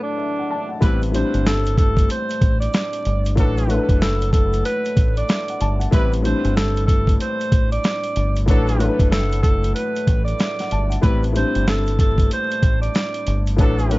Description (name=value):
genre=hip hop, boom-bap hip-hop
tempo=94 BPM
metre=4/4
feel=swing 62% on 16ths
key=A dorian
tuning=A4 = 440 Hz
part: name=breathy tenor saxophone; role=melody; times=0.0-14.0 s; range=D4 to D5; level=-24 LUFS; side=right 1 dB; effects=high-pass filter, low-pass filter
part: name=dark upright piano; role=accompaniment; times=0.0-14.0 s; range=A2 to A5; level=-24 LUFS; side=left 3 dB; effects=high-pass filter, low-pass filter
part: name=mellow trumpet section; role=stabs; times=0.8-14.0 s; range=F#3 to B4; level=-30 LUFS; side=right 1 dB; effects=high-pass filter, low-pass filter, analog delay
part: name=deep dub fingered electric bass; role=bass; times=0.8-14.0 s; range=F#1 to A1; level=-20 LUFS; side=equal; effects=none
part: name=boom bap sampler-style drum kit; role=drums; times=0.8-14.0 s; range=hi-hat, kick drum, snare drum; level=-18 LUFS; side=equal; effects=none
part: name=tube shaker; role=percussion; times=0.8-14.0 s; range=none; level=-51 LUFS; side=right 4 dB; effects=none
room=little or no reverb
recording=vinyl crackle, nothing above 7.6 kHz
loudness=-16 LUFS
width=side -20 dB against mid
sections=0.8-14.0 A section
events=break 0.0-0.8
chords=0.0 Bm7; 0.8 Am9; 3.4 Bm7; 5.9 Am9; 8.5 Bm7; 11.0 Am9